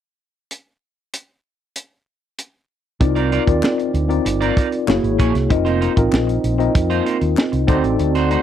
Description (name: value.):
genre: polished 1980s jazz-funk pop.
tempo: 96 BPM.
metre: 4/4.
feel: straight.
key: C dorian.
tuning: A4 = 440 Hz.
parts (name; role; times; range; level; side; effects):
tight funk drum kit; drums; 0.5-8.4 s; hi-hat, kick drum, snare drum; -19 LUFS; equal; none.
mellow tine electric piano; accompaniment; 3.0-8.4 s; A#3 to Eb5; -18 LUFS; left 2 dB; medium stereo tremolo, wide subtle chorus.
clean electric guitar; riff; 3.0-8.4 s; A3 to D5; -24 LUFS; right 7 dB; wide subtle chorus.
woody fretless electric bass; bass; 3.0-8.4 s; F1 to F2; -20 LUFS; equal; ensemble chorus.
group handclap; percussion; 3.6-7.5 s; none; -31 LUFS; left 6 dB; none.
room: little or no reverb.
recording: dry, close 1970s-style studio recording.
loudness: -15 LUFS.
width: side -10 dB against mid.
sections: 0.5-3.0 A section; 3.0-8.4 B section.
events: none.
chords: 0.5 N.C.; 3.0 Cm11; 4.9 F#9; 5.5 F7sus4; 7.7 D7b9.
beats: | 0.51 1.13 1.76 2.38 | 3.00 3.63 4.25 4.88 | 5.50 6.12 6.75 7.37 | 8.00.